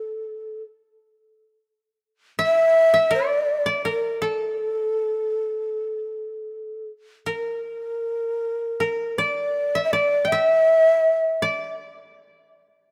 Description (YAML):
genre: japanese traditional, Japanese chamber music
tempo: 80 BPM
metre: 4/4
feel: uneven beats, rubato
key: A in sen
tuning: A4 = 435 Hz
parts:
  - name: breathy mellow shakuhachi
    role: melody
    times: 0.0-11.8 s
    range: A4 to E5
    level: -23 LUFS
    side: equal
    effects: none
  - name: koto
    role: second line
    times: 0.0-12.9 s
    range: D4 to G5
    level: -28 LUFS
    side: equal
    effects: none
room: moderate plate reverb, RT60 2.7 s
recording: none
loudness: -22 LUFS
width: mono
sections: 0.0-7.7 A section; 7.7-12.9 B section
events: none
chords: none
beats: 0.24 0.96 | 1.67 2.39 3.12 3.85 | 4.58 5.32 6.08 6.87 | 7.65 8.42 9.17 9.93 | 10.68 11.42 12.15 12.87